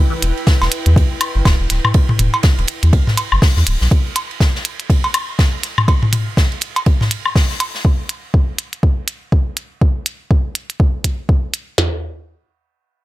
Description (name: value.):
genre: minimal techno.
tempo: 122 BPM.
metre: 4/4.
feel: swing 59% on 16ths.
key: E minor.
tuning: A4 = 439 Hz.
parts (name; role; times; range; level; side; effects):
airy breathy pad; texture; 0.0-3.9 s; E4 to G5; -29 LUFS; equal; chorus, sidechain pumping.
round analog bass; bass; 0.2-3.9 s; D1 to E2; -14 LUFS; equal; sidechain pumping.
electronic hi-hat; drums; 0.2-11.7 s; none; -21 LUFS; right 2 dB; none.
swinging big-band drum kit; drums; 0.2-7.8 s; hi-hat, ride cymbal, snare drum; -25 LUFS; right 1 dB; sidechain pumping on cymbals, high-pass filter on cymbals, sidechain pumping on hats, high-pass filter on hats, high-pass filter on snare, high-pass filter on room.
minimal click drum kit; drums; 0.5-11.9 s; kick drum, snare drum, toms; -13 LUFS; equal; none.
electronic cowbell, woodblock and toms; percussion; 0.6-7.7 s; none; -18 LUFS; left 1 dB; dub echo.
room: little or no reverb.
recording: none.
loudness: -14 LUFS.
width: side -17 dB against mid.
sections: 0.0-11.8 A section; 11.8-13.0 B section.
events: fade-out on analog synth pad 0.0-3.9.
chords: 0.0 Em; 11.8 N.C..